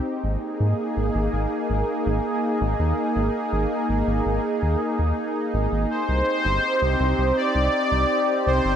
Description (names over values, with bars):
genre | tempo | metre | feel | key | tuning
synthwave | 82 BPM | 4/4 | straight | unclear | A4 = 440 Hz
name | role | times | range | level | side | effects
lush unison pad | sustained chords | 0.0-8.8 s | Bb3 to Ab4 | -24 LUFS | equal | chorus
round analog bass | bass | 0.2-8.8 s | G1 to Ab2 | -23 LUFS | equal | none
soft supersaw | melody | 5.9-8.8 s | C5 to D5 | -21 LUFS | equal | phaser, cassette tape
room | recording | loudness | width
moderate plate reverb, RT60 2.4 s | bright 1980s-style digital production | -20 LUFS | side -9 dB against mid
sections
0.0-8.8 A section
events
none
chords
0.1 Absus2; 5.9 Cm